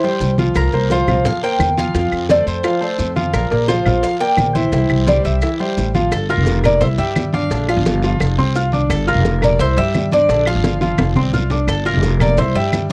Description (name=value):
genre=latin, Cuban son and guajira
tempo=173 BPM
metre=4/4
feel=straight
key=unclear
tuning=A4 = 441 Hz
part: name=Cuban tres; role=melody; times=0.0-12.9 s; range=A4 to G5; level=-22 LUFS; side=equal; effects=tape echo
part: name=clear concert grand piano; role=arpeggios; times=0.0-12.9 s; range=D3 to F6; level=-22 LUFS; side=equal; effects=none
part: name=bongos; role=percussion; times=0.0-12.9 s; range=none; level=-30 LUFS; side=equal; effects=none
part: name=congas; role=percussion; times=0.0-12.9 s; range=none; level=-24 LUFS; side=equal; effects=none
part: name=maracas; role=percussion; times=0.0-12.9 s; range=none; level=-41 LUFS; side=equal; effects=none
part: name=upright bass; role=bass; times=0.2-12.9 s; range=F1 to G2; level=-21 LUFS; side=equal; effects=none
part: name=guiro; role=percussion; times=0.2-12.9 s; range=none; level=-36 LUFS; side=equal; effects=none
part: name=claves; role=percussion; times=0.6-12.9 s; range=none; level=-28 LUFS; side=equal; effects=none
room=light reverb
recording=worn, warbling old tape, cassette tape, warbly pitch drift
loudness=-16 LUFS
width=mono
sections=0.0-6.1 A section; 6.1-12.9 B section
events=drum fill 10.8-11.7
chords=0.0 C5; 0.6 C7sus4; 1.9 F; 3.3 Bb; 4.7 C; 6.1 Gm7; 6.8 C; 7.5 Bb; 8.2 F5; 8.9 Gm7; 9.6 C; 10.3 Bb; 11.0 F5; 11.7 Gm7; 12.4 C